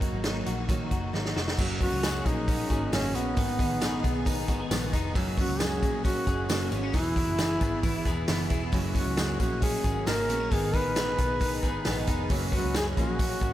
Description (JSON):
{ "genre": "jangly indie pop", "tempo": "134 BPM", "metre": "4/4", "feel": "straight", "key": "F# major", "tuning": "A4 = 440 Hz", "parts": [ { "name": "picked steel-string acoustic guitar", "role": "accompaniment", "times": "0.0-13.5 s", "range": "F#2 to G#4", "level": "-33 LUFS", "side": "right 4 dB", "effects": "none" }, { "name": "electric guitar at the edge of break-up", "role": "arpeggios", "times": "0.0-13.5 s", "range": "D#3 to G#4", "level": "-34 LUFS", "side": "left 4 dB", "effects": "ensemble chorus, diffuse ambient delay" }, { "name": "vintage muted picked electric bass", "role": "bass", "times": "0.0-13.5 s", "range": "E1 to C#2", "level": "-33 LUFS", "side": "equal", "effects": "none" }, { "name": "vintage drum kit", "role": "drums", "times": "0.0-13.5 s", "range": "crash cymbal, hi-hat, kick drum, snare drum", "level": "-29 LUFS", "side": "equal", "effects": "none" }, { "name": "tambourine", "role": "percussion", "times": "1.6-13.5 s", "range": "none", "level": "-44 LUFS", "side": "left 6 dB", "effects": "none" }, { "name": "mellow duduk", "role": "melody", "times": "1.8-13.5 s", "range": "B3 to B4", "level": "-31 LUFS", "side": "equal", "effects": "diffuse ambient delay" } ], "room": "moderate huge ambient reverb, RT60 7.7 s", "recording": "dreamy mix soaked in reverb", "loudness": "-25 LUFS", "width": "side -13 dB against mid", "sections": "0.0-1.6 A section; 1.6-13.5 B section", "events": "drum fill 1.1-1.6", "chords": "0.0 D#m; 1.6 F#add9; 3.4 G#m; 5.2 F#add9; 6.9 E; 8.7 F#add9; 10.5 G#m; 12.3 F#add9", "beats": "0.24 0.69 1.13 | 1.58 2.03 2.48 2.92 | 3.37 3.82 4.26 4.71 | 5.16 5.60 6.05 6.50 | 6.94 7.39 7.83 8.28 | 8.73 9.18 9.62 10.07 | 10.52 10.96 11.41 11.86 | 12.30 12.75 13.20" }